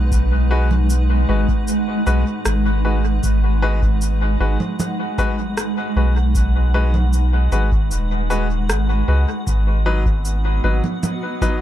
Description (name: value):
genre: ambient dub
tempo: 77 BPM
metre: 4/4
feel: straight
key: G# minor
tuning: A4 = 440 Hz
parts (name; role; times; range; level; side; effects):
- granular cloud pad; sustained chords; 0.0-11.6 s; G#3 to F#5; -24 LUFS; right 1 dB; built-in reverb
- soft dub sub bass; bass; 0.0-10.8 s; D#1 to C#2; -17 LUFS; equal; none
- electronic kick drum; drums; 0.1-11.6 s; none; -21 LUFS; equal; none
- electronic shaker, congas and rim click; drums; 0.1-11.6 s; none; -27 LUFS; right 2 dB; dub echo
- bright upright piano; stabs; 0.5-11.6 s; F#3 to B4; -25 LUFS; left 2 dB; vintage 12-bit sampler grit, dub echo
room: little or no reverb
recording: none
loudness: -16 LUFS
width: side -12 dB against mid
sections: 0.0-11.6 A section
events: none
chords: 0.0 G#m7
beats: | 0.12 0.90 1.68 2.46 | 3.23 4.01 4.79 5.57 | 6.35 7.13 7.91 8.69 | 9.47 10.25 11.03